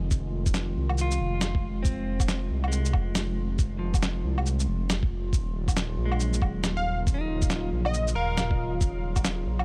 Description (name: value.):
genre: future garage.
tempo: 138 BPM.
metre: 4/4.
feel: swing 62% on 16ths.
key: F phrygian.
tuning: A4 = 443 Hz.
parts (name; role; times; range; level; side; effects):
warbly tape-like pad; sustained chords; 0.0-9.6 s; Db3 to F4; -38 LUFS; equal; chorus, built-in reverb, sidechain pumping.
swelling detuned saw bass; bass; 0.0-9.6 s; Eb1 to C2; -31 LUFS; equal; sidechain pumping.
electronic kick drum; drums; 0.1-9.2 s; none; -28 LUFS; equal; overdrive, small room ambience.
electronic shaker, snare drum and woodblock; drums; 0.1-9.6 s; none; -33 LUFS; equal; overdrive, small room ambience.
clean electric guitar; accompaniment; 1.0-8.7 s; F3 to Bb4; -38 LUFS; equal; vintage 12-bit sampler grit, sidechain pumping, tape echo.
plucky unison lead; melody; 6.8-8.8 s; Eb5 to F5; -35 LUFS; equal; cassette tape, tape echo.
room: little or no reverb.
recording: none.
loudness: -27 LUFS.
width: mono.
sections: 0.0-9.6 A section.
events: none.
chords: 0.0 Fm7; 5.3 Ebm9.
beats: | 0.11 0.55 0.98 1.42 | 1.85 2.29 2.72 3.16 | 3.59 4.03 4.46 4.90 | 5.33 5.77 6.20 6.64 | 7.07 7.50 7.94 8.38 | 8.81 9.24.